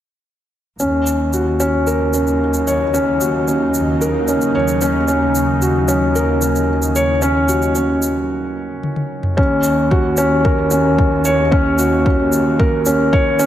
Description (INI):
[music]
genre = piano and strings electronica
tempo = 112 BPM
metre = 4/4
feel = straight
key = Eb minor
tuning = A4 = 440 Hz
[part]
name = lush unison pad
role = sustained chords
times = 2.0-9.3 s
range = Db3 to Eb4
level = -25 LUFS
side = right 1 dB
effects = chorus, phaser, sidechain pumping
[part]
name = felt-muted upright piano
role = riff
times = 0.8-13.5 s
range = Db4 to Db5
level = -16 LUFS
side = equal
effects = ping-pong delay
[part]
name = clear studio double bass section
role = bass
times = 0.8-13.5 s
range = Eb2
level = -20 LUFS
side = equal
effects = sidechain pumping
[part]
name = electronic shaker and toms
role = drums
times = 0.8-13.5 s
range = none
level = -24 LUFS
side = equal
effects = overdrive
[part]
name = electronic kick drum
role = drums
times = 9.4-13.2 s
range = none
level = -16 LUFS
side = equal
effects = none
[sound]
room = moderate recital hall reverb, RT60 1.6 s, digital ambience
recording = none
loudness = -14 LUFS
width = side -11 dB against mid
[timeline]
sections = 0.8-9.4 A section; 9.4-13.5 B section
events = fade-in on analog synth pad 0.8-9.4; filter sweep on double bass section 0.8-9.4; break 8.3-9.4; drum fill 8.8-9.4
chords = 0.8 Ebm7